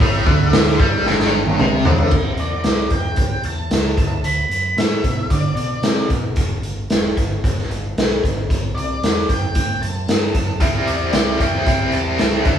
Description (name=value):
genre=blues rock power trio and southern rock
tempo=113 BPM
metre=4/4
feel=straight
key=unclear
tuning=A4 = 444 Hz
part: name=octave-fuzz lead guitar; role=melody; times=0.0-12.6 s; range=D5 to B5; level=-25 LUFS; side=equal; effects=distortion
part: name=biting overdriven guitar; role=riff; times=0.0-2.1, 10.6-12.6 s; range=G2 to E4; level=-18 LUFS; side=equal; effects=tremolo
part: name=growling fingered electric bass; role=bass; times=0.0-12.6 s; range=E1 to D3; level=-24 LUFS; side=right 1 dB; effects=overdrive
part: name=raw garage drum kit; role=drums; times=0.0-12.6 s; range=crash cymbal, hi-hat, kick drum, snare drum, toms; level=-18 LUFS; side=equal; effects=none
room=moderate large studio reverb, RT60 1.0 s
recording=band playing live in one room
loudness=-16 LUFS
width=side -9 dB against mid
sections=0.0-2.1 A section; 2.1-12.6 B section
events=drum fill 1.1-2.1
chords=0.0 A5; 2.1 C; 4.0 D; 6.4 Em; 8.5 Am; 10.6 C